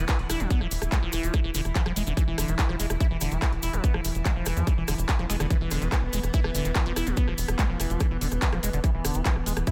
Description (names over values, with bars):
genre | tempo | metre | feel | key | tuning
psychedelic trance | 144 BPM | 4/4 | straight | unclear | A4 = 440 Hz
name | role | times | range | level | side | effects
metallic wobble bass | second line | 0.0-0.6, 5.3-6.8 s | E3 to D4 | -44 LUFS | equal | lush chorus, sidechain pumping, high-pass filter, digital delay
evolving wavetable pad | sustained chords | 0.0-9.7 s | E3 to E4 | -37 LUFS | equal | chorus, built-in reverb, sidechain pumping
liquid acid bass | riff | 0.0-9.7 s | D3 to E4 | -35 LUFS | equal | phaser, sidechain pumping, dub echo
tight sequencer bass | bass | 0.0-9.6 s | E1 to E2 | -31 LUFS | equal | tube saturation
drum and bass drum kit | drums | 0.1-9.7 s | handclaps, hi-hat, rim click | -35 LUFS | equal | none
electronic kick drum | drums | 0.1-9.7 s | none | -26 LUFS | equal | none
cabasa | percussion | 0.1-9.7 s | none | -39 LUFS | equal | none
room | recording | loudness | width
little or no reverb | none | -26 LUFS | mono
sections
0.0-9.7 A section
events
none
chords
0.0 E5